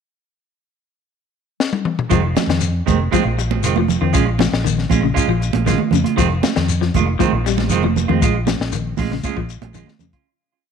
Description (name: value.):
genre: afrobeat.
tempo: 118 BPM.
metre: 4/4.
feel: straight.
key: F minor.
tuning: A4 = 437 Hz.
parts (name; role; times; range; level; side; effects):
compact cocktail drum kit; drums; 1.6-10.3 s; hi-hat, kick drum, snare drum, toms; -22 LUFS; left 4 dB; none.
semi-hollow electric guitar; arpeggios; 2.1-10.2 s; Db3 to G3; -23 LUFS; left 12 dB; none.
semi-hollow electric guitar; stabs; 2.1-10.3 s; Eb3 to F4; -22 LUFS; right 10 dB; tape echo.
fingered electric bass; bass; 2.1-10.1 s; F1 to F2; -20 LUFS; left 1 dB; none.
shekere; percussion; 2.1-10.1 s; none; -27 LUFS; left 7 dB; none.
congas; percussion; 2.4-10.1 s; none; -21 LUFS; right 12 dB; none.
room: light reverb, studio reverb.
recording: 1960s-style stereo with parts hard left and right.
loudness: -15 LUFS.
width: side -7 dB against mid.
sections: 0.1-2.1 pickup bar; 2.1-10.3 groove.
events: drum fill 1.6-2.1; fade-out 8.2-10.3.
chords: 0.1 N.C.; 2.1 Fm7; 4.1 Bbm7; 6.2 Fm7; 8.2 Bbm7.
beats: | 0.07 0.58 1.09 1.60 | 2.11 2.62 3.13 3.64 | 4.15 4.66 5.17 5.67 | 6.18 6.69 7.20 7.71 | 8.22 8.73 9.24 9.75.